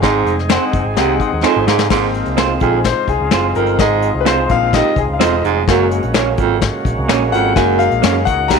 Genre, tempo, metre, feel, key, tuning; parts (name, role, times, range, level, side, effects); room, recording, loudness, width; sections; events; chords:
uptempo 1960s-style soul; 127 BPM; 4/4; straight; Ab mixolydian; A4 = 440 Hz
bright grand piano; accompaniment; 0.0-8.6 s; F3 to Eb6; -18 LUFS; left 12 dB
overdriven tonewheel organ; sustained chords; 0.0-8.6 s; Ab3 to Ab4; -22 LUFS; equal; fast rotary speaker
warm baritone saxophone; riff; 0.0-8.6 s; Eb2 to Ab2; -18 LUFS; right 15 dB
picked electric bass with an envelope filter; bass; 0.0-8.6 s; Fb1 to Ab2; -21 LUFS; equal
vintage brush drum kit; drums; 0.0-8.6 s; crash cymbal, hi-hat, kick drum, snare drum; -18 LUFS; left 5 dB
electric guitar through a small old amp; stabs; 0.5-8.2 s; Bb3 to Db5; -21 LUFS; right 13 dB; spring reverb
finger snaps; percussion; 0.5-8.1 s; -25 LUFS; left 13 dB
light reverb, small room reverb; 1960s-style stereo with parts hard left and right; -12 LUFS; side -5 dB against mid
0.0-1.9 A section; 1.9-8.6 B section
grand piano fill 1.0-1.9; drum fill 1.4-1.9; grand piano solo 1.9-8.6
0.0 Ab; 1.9 Ab6; 5.7 Gbadd9